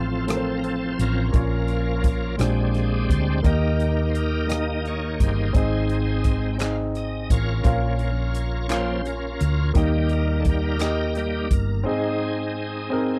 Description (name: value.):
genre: slow gospel.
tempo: 57 BPM (dotted quarters).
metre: 6/8.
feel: straight.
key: Ab major.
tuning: A4 = 440 Hz.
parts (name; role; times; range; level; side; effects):
warm grand piano; accompaniment; 0.0-13.2 s; Ab2 to F5; -29 LUFS; equal; none.
bright tonewheel organ; sustained chords; 0.0-13.2 s; Eb3 to G5; -31 LUFS; equal; slow rotary speaker, chorus vibrato.
hollow-body short-scale fingered electric bass; bass; 0.0-11.8 s; G1 to Eb2; -26 LUFS; equal; none.
swinging big-band drum kit; drums; 0.3-11.7 s; hi-hat, kick drum, rim click; -24 LUFS; equal; none.
group handclap; percussion; 6.6-11.1 s; none; -38 LUFS; equal; none.
room: little or no reverb.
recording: dry, close 1970s-style studio recording.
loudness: -23 LUFS.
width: mono.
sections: 0.0-13.2 A section.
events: tonewheel organ solo 0.0-13.2.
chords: 0.0 F/A; 1.3 Bbm; 2.4 Bb13; 3.4 Eb; 5.5 Ab; 7.7 Bbm; 9.8 Eb; 11.9 Ab.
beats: 0.29 | 1.34 2.39 | 3.44 4.49 | 5.54 6.60 | 7.65 8.70 | 9.76 10.81 | 11.86 12.92.